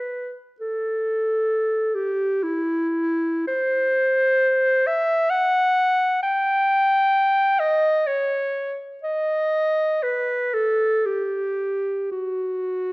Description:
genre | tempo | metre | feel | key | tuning
classical, free, expressive piece for unaccompanied clarinet | 52-68 BPM | 3/4 | rubato | unclear | A4 = 440 Hz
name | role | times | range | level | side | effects
warm clarinet | solo | 0.0-12.9 s | E4 to G5 | -19 LUFS | equal | none
room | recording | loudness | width
moderate recital hall reverb, RT60 1.4 s | worn, warbling old tape, cassette tape, warbly pitch drift | -19 LUFS | side -25 dB against mid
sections
0.0-12.9 A section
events
none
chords
none

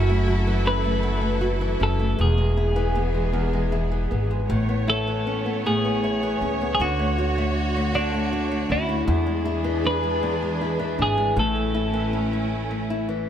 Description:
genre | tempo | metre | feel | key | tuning
six-eight pop ballad | 52 BPM (dotted quarters) | 6/8 | straight | A major | A4 = 438 Hz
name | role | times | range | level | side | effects
twelve-string electric guitar | melody | 0.0-12.2 s | D4 to B4 | -26 LUFS | equal | none
flamenco guitar | accompaniment | 0.0-13.3 s | E2 to F#4 | -26 LUFS | left 2 dB | none
rich studio string section | sustained chords | 0.0-13.3 s | D3 to C#5 | -29 LUFS | right 2 dB | none
upright bass | bass | 0.0-13.2 s | E1 to E2 | -25 LUFS | equal | none
room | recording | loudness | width
light reverb, small room ambience | none | -21 LUFS | side -10 dB against mid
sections
0.0-13.3 A section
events
none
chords
0.0 F#m7; 2.2 E; 4.5 Aadd9; 6.8 Dmaj7; 9.1 E7; 11.4 A

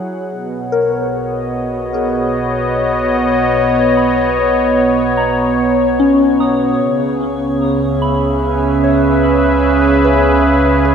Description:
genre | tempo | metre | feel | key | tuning
ambient | 74 BPM | 4/4 | straight | B major | A4 = 440 Hz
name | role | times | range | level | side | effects
warm analog pad | sustained chords | 0.0-10.9 s | B2 to F#5 | -13 LUFS | right 1 dB | chorus
soft synth bell | arpeggios | 0.0-10.9 s | C#4 to D#6 | -20 LUFS | left 2 dB | chorus, phaser, diffuse ambient delay
warm sub bass | bass | 0.3-10.9 s | B1 to C#2 | -23 LUFS | equal | none
organ-like drone | drone | 2.9-10.9 s | B3 to C#5 | -26 LUFS | right 2 dB | ensemble chorus, built-in reverb
room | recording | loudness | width
wet lush hall reverb, RT60 2.8 s | dreamy mix soaked in reverb | -12 LUFS | side -7 dB against mid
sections
0.3-10.9 A section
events
fade-in on sub bass 0.3-10.9; fade-in on synth drone 0.3-10.9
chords
0.3 Bmaj9; 6.8 C#m9

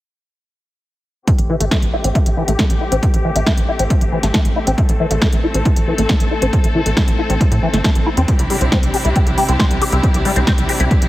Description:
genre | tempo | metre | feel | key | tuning
uplifting trance | 137 BPM | 4/4 | straight | A minor | A4 = 440 Hz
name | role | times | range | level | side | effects
clear studio string section | sustained chords | 1.3-11.1 s | C3 to A4 | -23 LUFS | left 2 dB | sidechain pumping, low-pass filter
liquid acid bass | arpeggios | 1.3-10.9 s | E3 to G4 | -21 LUFS | left 2 dB | phaser, ensemble chorus, sidechain pumping, dub echo
electronic kick drum | drums | 1.3-11.0 s | none | -16 LUFS | equal | small room reverb
techno drum kit | drums | 1.3-11.1 s | hi-hat, snare drum | -22 LUFS | equal | sidechain pumping on hats, small room reverb
tight sequencer bass | bass | 1.4-11.1 s | G1 to A2 | -18 LUFS | equal | sidechain pumping
room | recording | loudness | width
light reverb, digital ambience | heavily compressed radio sound, multiband compression | -13 LUFS | side -16 dB against mid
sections
1.3-11.1 A section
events
filter sweep on acid bass 1.3-11.1; filter sweep on string section 1.3-11.1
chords
1.3 Am7; 8.3 Cadd9

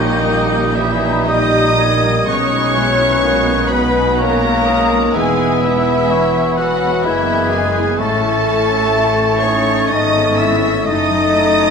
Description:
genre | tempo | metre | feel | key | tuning
classical, slow romantic movement for symphony orchestra | 62 BPM | 3/4 | rubato | unclear | A4 = 439 Hz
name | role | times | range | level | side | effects
rich chamber violin section | melody | 0.0-11.7 s | D#5 to E6 | -21 LUFS | left 2 dB | none
clear clarinet | second line | 0.0-11.7 s | D#4 to E5 | -23 LUFS | equal | none
rich chamber violin section | second line | 0.0-11.7 s | D#4 to E5 | -23 LUFS | left 1 dB | none
silver concert flute | second line | 0.0-11.7 s | E6 to A6 | -26 LUFS | left 3 dB | none
warm oboe | second line | 0.0-11.7 s | B4 to E5 | -24 LUFS | right 3 dB | none
mellow bassoon | accompaniment | 0.0-11.7 s | G3 to C#4 | -21 LUFS | right 1 dB | none
rich chamber viola section | accompaniment | 0.0-11.7 s | G3 to E4 | -23 LUFS | right 1 dB | none
mellow French horn section | sustained chords | 0.0-11.7 s | D#3 to E4 | -20 LUFS | left 4 dB | none
concert harp | arpeggios | 0.0-11.7 s | F#2 to D#6 | -23 LUFS | left 5 dB | none
rich chamber double bass section | bass | 0.0-11.7 s | E1 to B1 | -23 LUFS | right 5 dB | none
warm chamber cello section | bass | 0.0-11.7 s | E2 to B2 | -24 LUFS | right 2 dB | none
room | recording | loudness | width
wet scoring stage reverb, RT60 1.5 s | none | -12 LUFS | side -6 dB against mid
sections
0.0-11.7 A section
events
none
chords
0.0 D#7/A#; 2.3 G#m/B; 5.1 E; 8.0 A; 10.9 D#dim/F#

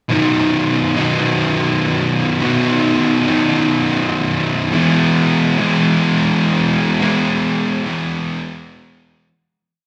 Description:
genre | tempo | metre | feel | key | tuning
rock | 104 BPM | 4/4 | straight | E major | A4 = 440 Hz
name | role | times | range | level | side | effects
fuzz guitar | solo | 0.1-9.3 s | B2 to E4 | -16 LUFS | equal | distortion
room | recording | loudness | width
wet large studio reverb, RT60 1.3 s | band playing live in one room | -16 LUFS | mono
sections
0.1-9.3 A section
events
fade-out 7.0-9.3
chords
0.1 B; 4.7 E

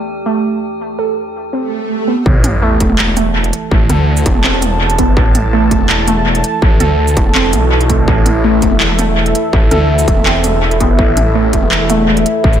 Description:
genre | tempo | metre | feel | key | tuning
half-time drum and bass | 165 BPM | 4/4 | half-time | A minor | A4 = 440 Hz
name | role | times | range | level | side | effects
dark analog pad | sustained chords | 0.0-12.6 s | E3 to A5 | -18 LUFS | right 1 dB | chorus, sidechain pumping
warbly dusty pluck | arpeggios | 0.0-12.6 s | A3 to A4 | -17 LUFS | right 1 dB | chorus, phaser, dub echo
metallic inharmonic drone | texture | 0.0-1.5 s | G4 | -25 LUFS | equal | chorus, built-in reverb
swell and sub drop | sound effects | 1.6-3.7 s | none | -20 LUFS | right 2 dB | none
phased detuned saw bass | bass | 2.3-12.6 s | E1 to D2 | -14 LUFS | equal | phaser
electronic kick drum | drums | 2.3-12.5 s | none | -13 LUFS | equal | distortion, overdrive
industrial drum kit | drums | 2.4-12.6 s | handclaps, hi-hat, shaker, toms | -18 LUFS | right 1 dB | overdrive, dub echo
room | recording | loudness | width
light reverb | echo-heavy mix | -10 LUFS | side -10 dB against mid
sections
0.0-2.3 A section; 2.3-12.6 B section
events
filter sweep on synth pluck 0.0-2.3; swell 1.6-2.3; drop 2.3-12.6; impact 2.3-3.7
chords
0.0 A5

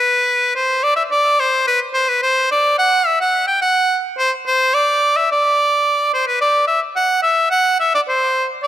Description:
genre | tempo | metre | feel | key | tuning
medieval | 108 BPM | 2/4 | straight | D mixolydian | A4 = 437 Hz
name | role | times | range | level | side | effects
edgy shawm | solo | 0.0-8.7 s | B4 to G5 | -14 LUFS | equal | tape echo
room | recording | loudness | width
moderate recital hall reverb, RT60 1.6 s | close, detailed microphones | -14 LUFS | side -12 dB against mid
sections
0.0-6.4 A section; 6.4-8.7 B section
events
none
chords
none

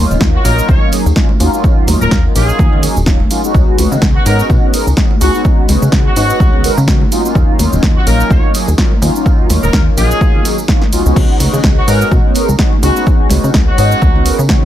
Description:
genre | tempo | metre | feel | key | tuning
filtered disco house | 126 BPM | 4/4 | swing 56% on 16ths | Eb minor | A4 = 440 Hz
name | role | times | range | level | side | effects
mellow synth brass | accompaniment | 0.0-14.6 s | Gb3 to Bb4 | -16 LUFS | equal | chorus, phaser, vintage 12-bit sampler grit, sidechain pumping
plucky analog bass | bass | 0.0-14.7 s | Eb1 to Db3 | -14 LUFS | equal | tube saturation, sidechain pumping
punchy analog drum machine | drums | 0.1-14.6 s | cabasa, crash cymbal, hi-hat, snare drum | -19 LUFS | equal | overdrive, sidechain pumping on hats, studio reverb, sidechain pumping on perc, sidechain pumping on cymbals
congas and tambourine | percussion | 0.1-14.6 s | none | -24 LUFS | right 2 dB | sidechain pumping on perc
electronic kick drum | drums | 0.2-14.6 s | none | -12 LUFS | equal | overdrive, studio reverb
warm horn section | melody | 0.3-14.3 s | Gb4 to Db5 | -20 LUFS | right 1 dB | vintage 12-bit sampler grit, sidechain pumping
room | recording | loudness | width
digital ambience | none | -9 LUFS | side -12 dB against mid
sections
0.0-14.7 A section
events
none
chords
0.0 Ebm7; 3.5 Db9sus4; 7.1 Ebm7; 11.2 Db9sus4

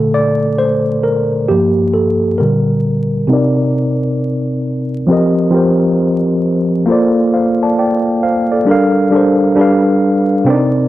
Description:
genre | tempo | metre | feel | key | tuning
hip hop | 67 BPM | 4/4 | swing 66% on 16ths | Bb major | A4 = 437 Hz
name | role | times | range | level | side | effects
mellow tine electric piano | solo | 0.0-10.9 s | G2 to A5 | -11 LUFS | equal | medium stereo tremolo, low-pass filter
room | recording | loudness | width
light reverb, digital ambience | dry, gritty hardware recording, vinyl crackle | -11 LUFS | side -15 dB against mid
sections
0.0-3.3 A section; 3.3-10.9 B section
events
tine electric piano solo 0.0-3.3; filter sweep on tine electric piano 3.3-10.9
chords
0.0 Bbmaj7; 1.5 Gm9; 2.4 Bb6; 3.3 Cm7; 5.1 F9sus4; 6.9 Bbmaj7; 8.7 Gm9; 9.6 G7

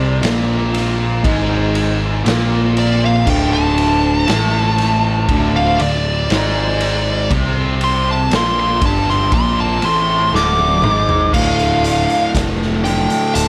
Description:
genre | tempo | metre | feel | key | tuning
stoner and doom metal | 60 BPM | 4/4 | straight | unclear | A4 = 440 Hz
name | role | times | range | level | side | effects
fuzz lead guitar | melody | 0.0-13.5 s | D5 to D6 | -20 LUFS | equal | distortion, slapback echo
fuzz guitar | riff | 0.0-13.5 s | D2 to C4 | -21 LUFS | equal | distortion
fuzz picked electric bass | bass | 0.0-13.5 s | D1 to C2 | -21 LUFS | equal | overdrive
raw garage drum kit | drums | 0.2-13.5 s | crash cymbal, hi-hat, kick drum, ride cymbal, snare drum, toms | -23 LUFS | equal | none
room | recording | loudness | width
light reverb, small room ambience | none | -15 LUFS | mono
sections
0.0-11.3 A section; 11.3-13.5 B section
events
lead electric guitar solo 0.0-11.3; drum fill 10.3-11.3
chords
0.0 D5; 11.3 Dm

